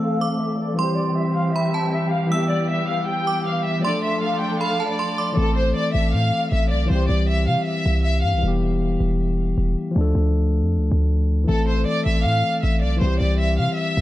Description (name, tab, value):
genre	hip hop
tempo	157 BPM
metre	4/4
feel	half-time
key	A minor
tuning	A4 = 440 Hz
part	rich studio violin section	melody	0.0-8.4, 11.5-14.0 s	A4 to G5	-25 LUFS	equal	low-pass filter
part	metallic FM bell	second line	0.0-5.4 s	A5 to E6	-28 LUFS	right 3 dB	chorus, tape echo
part	overdriven tine electric piano	accompaniment	0.0-14.0 s	E3 to A4	-24 LUFS	left 2 dB	low-pass filter
part	dark symphonic string section	sustained chords	0.0-5.4 s	E3 to A4	-27 LUFS	right 2 dB	low-pass filter
part	warm 808-style bass	bass	5.4-14.0 s	E1 to C3	-20 LUFS	equal	none
room	light reverb, studio ambience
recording	dark, warm production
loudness	-18 LUFS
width	side -15 dB against mid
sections	0.0-5.4 A section; 5.4-14.0 B section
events	filter sweep 0.0-5.4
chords	0.0 Am; 0.8 C; 2.3 Em; 3.8 Dm; 5.4 Am; 6.9 C; 8.4 Em; 10.0 Dm; 11.5 Am; 13.0 C